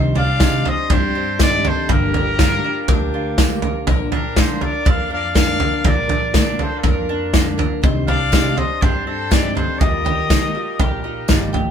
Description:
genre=indie folk with a building arrangement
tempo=121 BPM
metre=4/4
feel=straight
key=Bb major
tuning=A4 = 441 Hz
part: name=picked steel-string acoustic guitar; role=accompaniment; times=0.0-11.7 s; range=G2 to Bb4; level=-26 LUFS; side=left 4 dB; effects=none
part: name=mandolin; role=arpeggios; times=0.0-11.7 s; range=G3 to C5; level=-28 LUFS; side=right 3 dB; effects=none
part: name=upright bass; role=bass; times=0.0-11.7 s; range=G1 to Eb3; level=-24 LUFS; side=equal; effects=none
part: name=warm trumpet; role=melody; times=0.2-11.5 s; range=G4 to F5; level=-22 LUFS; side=left 1 dB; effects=none
part: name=rich fiddle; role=second line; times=0.2-11.5 s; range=D4 to D5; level=-30 LUFS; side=left 6 dB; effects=none
part: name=natural country drum kit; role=drums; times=0.2-11.7 s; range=kick drum, snare drum, toms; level=-17 LUFS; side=equal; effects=none
part: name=tambourine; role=percussion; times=0.4-11.4 s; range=none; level=-32 LUFS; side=right 8 dB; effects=none
room=light reverb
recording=band playing live in one room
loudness=-15 LUFS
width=side -8 dB against mid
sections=0.0-11.7 A section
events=none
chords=0.0 Cmadd9; 1.9 Gm7; 3.9 Bb; 7.8 Cmadd9; 9.8 Ebadd9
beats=0.41 0.90 1.40 | 1.90 2.39 2.89 3.38 | 3.88 4.37 4.87 5.36 | 5.86 6.35 6.85 7.34 | 7.84 8.33 8.82 9.32 | 9.81 10.31 10.80 11.30

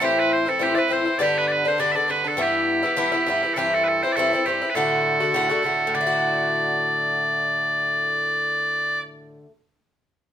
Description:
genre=celtic folk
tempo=203 BPM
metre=4/4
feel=swing 54% on 8ths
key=D mixolydian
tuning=A4 = 441 Hz
part: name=loud bright bagpipes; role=melody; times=0.0-9.0 s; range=G4 to E5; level=-21 LUFS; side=right 1 dB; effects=none
part: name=Irish bouzouki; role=accompaniment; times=0.0-9.6 s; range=G2 to F#4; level=-23 LUFS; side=left 2 dB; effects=none
room=moderate studio reverb, RT60 0.7 s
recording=minimal, uncompressed stereo recording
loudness=-19 LUFS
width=side -10 dB against mid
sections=0.0-5.9 A section; 5.9-8.3 B section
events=none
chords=0.0 Am; 1.2 G; 2.4 Em; 3.6 C; 4.8 D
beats=| 0.02 0.32 0.61 0.91 | 1.20 1.50 1.79 2.09 | 2.39 2.68 2.98 3.27 | 3.57 3.87 4.16 4.46 | 4.75 5.05 5.34 5.64 | 5.93 6.23 6.52 6.82 | 7.11 7.41 7.70 8.00

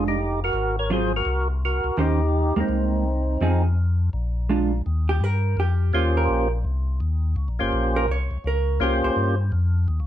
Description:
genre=soul jazz organ trio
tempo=167 BPM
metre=4/4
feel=swing 64% on 8ths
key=Eb mixolydian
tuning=A4 = 442 Hz
part: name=percussive tonewheel organ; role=melody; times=0.0-3.6, 5.9-9.4 s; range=Bb3 to Db5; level=-24 LUFS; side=equal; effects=slow rotary speaker, overdrive, plate reverb
part: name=vintage hollow-body jazz guitar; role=accompaniment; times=0.0-9.4 s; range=Eb3 to Db5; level=-25 LUFS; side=right 4 dB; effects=none
part: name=tonewheel organ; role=bass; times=0.0-10.1 s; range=F1 to G2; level=-22 LUFS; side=left 1 dB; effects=overdrive, slow rotary speaker
room=light reverb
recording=none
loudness=-20 LUFS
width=side -11 dB against mid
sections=0.0-4.9 A section; 4.9-10.1 B section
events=hollow-body jazz guitar solo 4.9-10.1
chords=0.0 Bb6; 0.5 Ab13; 2.0 Eb6; 2.7 Cm7; 3.4 Fm7; 4.1 Bb7; 4.9 Eb13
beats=0.18 | 0.54 0.90 1.26 1.62 | 1.98 2.34 2.70 3.06 | 3.42 3.78 4.14 4.50 | 4.86 5.22 5.58 5.93 | 6.29 6.66 7.01 7.37 | 7.73 8.09 8.45 8.81 | 9.17 9.53 9.89

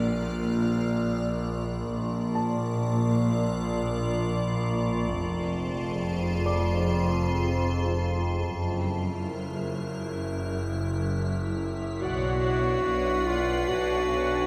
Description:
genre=cinematic, suspense film score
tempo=72 BPM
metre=4/4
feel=straight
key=unclear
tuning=A4 = 440 Hz
part: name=icy glass pad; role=sustained chords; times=0.0-14.5 s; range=D4 to C#6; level=-35 LUFS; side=equal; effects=chorus, built-in reverb
part: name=muted studio cello section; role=bass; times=0.0-14.4 s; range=F2 to B2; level=-33 LUFS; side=equal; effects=none
part: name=muted studio double bass section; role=bass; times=0.0-14.4 s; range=F1 to B1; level=-34 LUFS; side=equal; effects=none
part: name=overtone-sweeping drone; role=drone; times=0.0-14.5 s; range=F#1 to F2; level=-35 LUFS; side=equal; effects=chorus, built-in reverb
part: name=clear concert grand piano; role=texture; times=2.4-14.5 s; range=D5 to D6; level=-41 LUFS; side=equal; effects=none
part: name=muted studio violin section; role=melody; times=12.0-14.5 s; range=F#5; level=-39 LUFS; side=equal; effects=none
part: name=bright clarinet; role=second line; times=12.0-14.5 s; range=E#4 to F#4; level=-29 LUFS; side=equal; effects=none
part: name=muted studio violin section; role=second line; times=12.0-14.5 s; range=C#5 to D5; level=-36 LUFS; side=equal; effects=none
part: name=muted studio violin section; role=texture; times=12.0-14.5 s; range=B6 to C7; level=-44 LUFS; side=equal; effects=none
room=light reverb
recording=none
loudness=-28 LUFS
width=mono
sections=0.0-12.0 A section; 12.0-14.5 B section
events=none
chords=0.0 Bb; 5.2 Fm; 8.6 F#7; 12.0 Bmadd9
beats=0.31 1.12 | 1.94 2.75 3.57 4.39 | 5.22 6.04 6.87 7.71 | 8.58 9.44 10.30 11.16 | 12.01 12.85 13.68

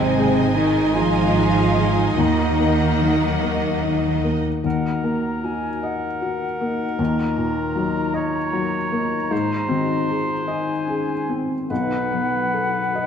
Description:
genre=cinematic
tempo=48-52 BPM (dotted quarters)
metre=6/8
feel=rubato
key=Eb minor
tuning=A4 = 441 Hz
part: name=warm studio violin section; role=melody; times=0.0-4.2 s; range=C5 to F5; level=-30 LUFS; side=left 2 dB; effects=none
part: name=dark clarinet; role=second line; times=0.0-13.1 s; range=C4 to Gb4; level=-29 LUFS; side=right 1 dB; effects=none
part: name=rich studio violin section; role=second line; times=0.0-4.4 s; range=Eb5 to Ab5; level=-26 LUFS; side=left 1 dB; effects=none
part: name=felt-muted upright piano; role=accompaniment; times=0.0-13.1 s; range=B1 to Eb5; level=-24 LUFS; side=left 2 dB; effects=none
part: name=rich studio viola section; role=accompaniment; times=0.0-4.4 s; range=Ab3 to Eb4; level=-25 LUFS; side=right 2 dB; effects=none
part: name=concert harp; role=arpeggios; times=0.0-13.1 s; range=Ab2 to C5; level=-27 LUFS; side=left 5 dB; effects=none
part: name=clear studio cello section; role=bass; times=0.0-4.2 s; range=C3 to F3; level=-25 LUFS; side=right 3 dB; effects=none
part: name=rich studio double bass section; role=bass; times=0.0-4.4 s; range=Ab1 to Eb2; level=-24 LUFS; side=right 3 dB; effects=none
part: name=silver concert flute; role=second line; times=4.6-13.1 s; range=Gb5 to Bb5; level=-29 LUFS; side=left 2 dB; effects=none
part: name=warm oboe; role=second line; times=4.7-13.1 s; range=Bb4 to Db5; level=-27 LUFS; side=right 1 dB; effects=none
room=wet scoring stage reverb, RT60 2.0 s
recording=dark, warm production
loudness=-18 LUFS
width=side -7 dB against mid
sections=0.0-4.6 A section; 4.6-13.1 B section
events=none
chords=0.0 Ab; 2.2 Ebm; 9.3 Ab; 11.7 B7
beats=0.95 | 2.18 3.42 | 4.65 5.84 | 6.99 8.15 | 9.31 10.48 | 11.70 12.95

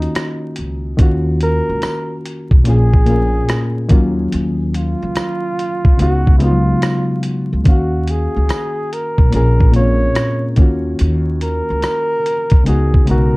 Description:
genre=lo-fi hip hop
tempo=72 BPM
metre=4/4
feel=swing 66% on 16ths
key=Eb minor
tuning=A4 = 441 Hz
part: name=breathy flugelhorn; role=melody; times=0.0-13.4 s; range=Eb4 to Db5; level=-22 LUFS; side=right 1 dB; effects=none
part: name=reed electric piano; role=accompaniment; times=0.0-13.4 s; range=Bb2 to F5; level=-18 LUFS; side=left 1 dB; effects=overdrive, cassette tape
part: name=upright bass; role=bass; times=0.0-13.3 s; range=Bb1 to Eb2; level=-17 LUFS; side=equal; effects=none
part: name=lo-fi sampler-style drum kit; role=drums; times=0.0-13.3 s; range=hi-hat, kick drum, rim click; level=-12 LUFS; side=equal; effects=none
part: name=tambourine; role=percussion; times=0.2-12.1 s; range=none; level=-42 LUFS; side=right 6 dB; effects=none
room=light reverb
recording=dark, warm production, vinyl crackle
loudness=-13 LUFS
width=side -24 dB against mid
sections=1.0-13.4 A section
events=break 0.0-1.0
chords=0.0 Ebm9; 2.7 Bbm7; 3.9 Ebm9; 6.0 Db9sus4; 7.7 Ebm9; 9.3 Bbm7; 10.6 Ebm9; 12.7 Db9sus4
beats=0.16 | 0.99 1.82 2.66 3.49 | 4.33 5.16 5.99 6.83 | 7.66 8.49 9.32 10.16 | 10.99 11.82 12.66

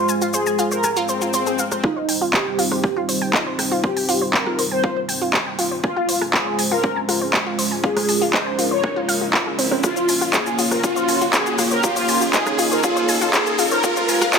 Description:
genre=melodic techno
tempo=120 BPM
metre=4/4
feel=straight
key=unclear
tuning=A4 = 440 Hz
part: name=mellow synth brass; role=melody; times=0.0-14.4 s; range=Eb4 to Db5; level=-23 LUFS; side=equal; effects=chorus, phaser, ping-pong delay
part: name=dark analog pad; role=sustained chords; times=0.0-14.4 s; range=G3 to Db5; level=-26 LUFS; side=right 1 dB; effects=chorus, sidechain pumping
part: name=analog pluck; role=arpeggios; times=0.0-14.4 s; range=C4 to Ab5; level=-24 LUFS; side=left 1 dB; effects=chorus, sidechain pumping, ping-pong delay
part: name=techno drum kit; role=drums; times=0.1-14.4 s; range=handclaps, hi-hat, rim click, shaker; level=-21 LUFS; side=equal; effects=overdrive, studio reverb
part: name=swell and riser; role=sound effects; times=1.0-14.4 s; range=none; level=-27 LUFS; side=equal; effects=none
part: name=electronic kick drum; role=drums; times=1.8-14.4 s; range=none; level=-22 LUFS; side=equal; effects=overdrive, high-pass filter on kick, studio reverb
room=moderate scoring stage reverb, RT60 1.8 s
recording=high-pass filter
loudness=-17 LUFS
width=side -6 dB against mid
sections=0.0-1.8 A section; 1.8-14.4 B section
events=filter sweep on analog polysynth 0.0-1.8; swell 1.0-1.8; build-up 1.8-14.4; riser 1.8-14.4; filter sweep on synth pluck 1.8-14.4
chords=0.0 Fm/Ab; 1.8 Cm; 5.8 Dbmaj7; 9.8 Bbm; 13.8 Fmadd9/Ab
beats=0.34 0.84 1.34 | 1.84 2.34 2.84 3.34 | 3.84 4.34 4.84 5.34 | 5.84 6.34 6.84 7.34 | 7.84 8.34 8.84 9.34 | 9.84 10.34 10.84 11.34 | 11.84 12.34 12.84 13.34 | 13.84 14.34

